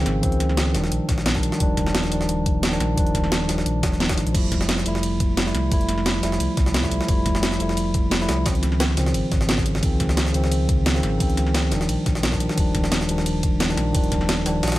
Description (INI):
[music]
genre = liquid drum and bass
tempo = 175 BPM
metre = 4/4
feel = straight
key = unclear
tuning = A4 = 442 Hz
[part]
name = mellow tine electric piano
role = accompaniment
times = 0.0-14.8 s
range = Db3 to E4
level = -23 LUFS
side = equal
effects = digital delay
[part]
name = sub bass with octave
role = bass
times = 0.0-14.8 s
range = Eb1 to Db2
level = -25 LUFS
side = equal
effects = none
[part]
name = garage drum kit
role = drums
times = 0.1-14.7 s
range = crash cymbal, hi-hat, ride cymbal, snare drum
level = -27 LUFS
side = equal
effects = none
[part]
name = jungle sampler-style drum kit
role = drums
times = 0.1-14.8 s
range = hi-hat, snare drum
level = -29 LUFS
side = equal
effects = high-pass filter on snare, high-pass filter on hats
[part]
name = electronic kick drum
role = drums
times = 0.2-14.2 s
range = none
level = -23 LUFS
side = equal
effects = none
[sound]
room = light reverb, digital ambience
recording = none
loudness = -19 LUFS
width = side -16 dB against mid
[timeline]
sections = 0.0-14.8 A section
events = none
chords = 0.0 Dbmaj9; 0.7 Ebmaj9; 4.3 Fmaj9; 8.5 Dbmaj9; 11.7 Ebmaj9